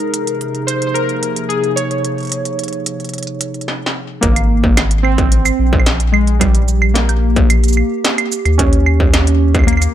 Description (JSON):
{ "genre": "IDM", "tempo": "110 BPM", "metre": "4/4", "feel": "straight", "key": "Ab major", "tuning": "A4 = 440 Hz", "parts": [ { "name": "warbly lo-fi synth keys", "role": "melody", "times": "0.0-9.9 s", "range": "G3 to Db5", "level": "-19 LUFS", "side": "equal", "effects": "chorus, digital delay" }, { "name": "warbly tape-like pad", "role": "sustained chords", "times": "0.0-9.9 s", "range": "C3 to Ab4", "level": "-23 LUFS", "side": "right 3 dB", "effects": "chorus, built-in reverb" }, { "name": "industrial drum kit", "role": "drums", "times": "0.0-9.9 s", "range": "cabasa, claves, hi-hat, snare drum", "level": "-19 LUFS", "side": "right 2 dB", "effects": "none" }, { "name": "round analog bass", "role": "bass", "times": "4.2-9.9 s", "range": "Ab1 to Eb2", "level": "-14 LUFS", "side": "equal", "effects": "tube saturation" }, { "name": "electronic kick drum", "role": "drums", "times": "4.2-9.7 s", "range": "none", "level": "-14 LUFS", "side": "equal", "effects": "distortion" } ], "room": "little or no reverb", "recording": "none", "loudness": "-12 LUFS", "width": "side -11 dB against mid", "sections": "0.0-4.2 A section; 4.2-9.9 B section", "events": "drum fill 3.7-4.2", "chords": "0.0 Bbm7; 4.2 Abmaj7(no3); 8.6 Eb" }